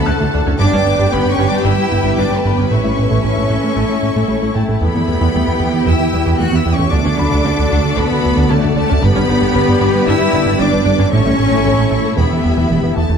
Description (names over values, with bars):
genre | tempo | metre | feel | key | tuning
cinematic, hybrid orchestral and electronic film score | 114 BPM | 4/4 | straight | unclear | A4 = 440 Hz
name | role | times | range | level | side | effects
rich studio violin section | melody | 0.0-13.2 s | A5 to F#6 | -24 LUFS | left 3 dB | none
rich symphonic violin section | second line | 0.0-13.0 s | G4 to A5 | -22 LUFS | left 3 dB | none
rich studio viola section | accompaniment | 0.0-13.1 s | G3 to G4 | -24 LUFS | equal | none
mellow French horn section | sustained chords | 0.0-13.2 s | A3 to F#4 | -22 LUFS | left 4 dB | none
warbly tape-like pad | sustained chords | 0.0-13.2 s | A3 to G5 | -22 LUFS | right 1 dB | chorus, built-in reverb
rubbery square bass | riff | 0.0-13.2 s | D2 to A3 | -18 LUFS | right 1 dB | none
clear symphonic cello section | bass | 0.0-13.0 s | A3 to F#4 | -21 LUFS | right 2 dB | none
felt-muted upright piano | texture | 0.0-11.2 s | E4 to F#6 | -31 LUFS | left 1 dB | none
tight sequenced synth | arpeggios | 0.1-13.2 s | D3 to A4 | -25 LUFS | left 3 dB | none
rich symphonic double bass section | bass | 0.1-13.1 s | E1 to E2 | -20 LUFS | right 2 dB | none
room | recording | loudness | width
wet scoring stage reverb, RT60 1.6 s | dark, warm production | -12 LUFS | side -7 dB against mid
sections
0.0-13.2 A section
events
none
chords
0.0 D; 0.6 G; 2.7 A; 4.8 Em; 6.9 D; 9.0 G; 11.1 A; 12.2 Em